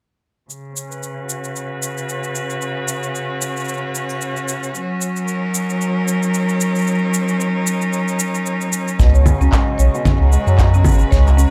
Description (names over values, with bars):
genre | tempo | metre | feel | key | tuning
folktronica | 113 BPM | 4/4 | swing 56% on 16ths | unclear | A4 = 436 Hz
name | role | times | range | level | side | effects
clear string quartet | sustained chords | 0.5-11.5 s | Db3 to Cb5 | -23 LUFS | equal | low-pass filter
electronic cabasa, congas and handclaps | drums | 0.5-11.5 s | none | -25 LUFS | equal | overdrive
hammered dulcimer | arpeggios | 9.0-11.5 s | Cb3 to Ab3 | -26 LUFS | equal | low-pass filter, delay, plate reverb
warm sub bass | bass | 9.0-11.5 s | Ab1 to Gb2 | -14 LUFS | equal | none
kick drum | drums | 9.0-11.2 s | none | -18 LUFS | equal | none
marimba with soft mallets | second line | 9.1-11.5 s | Db4 to Db5 | -27 LUFS | equal | delay
room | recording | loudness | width
moderate small room reverb, RT60 0.5 s | dark, warm production | -18 LUFS | mono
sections
0.5-9.0 A section; 9.0-11.5 B section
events
none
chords
0.5 Db7sus4; 4.7 Gb6; 9.0 Db7sus4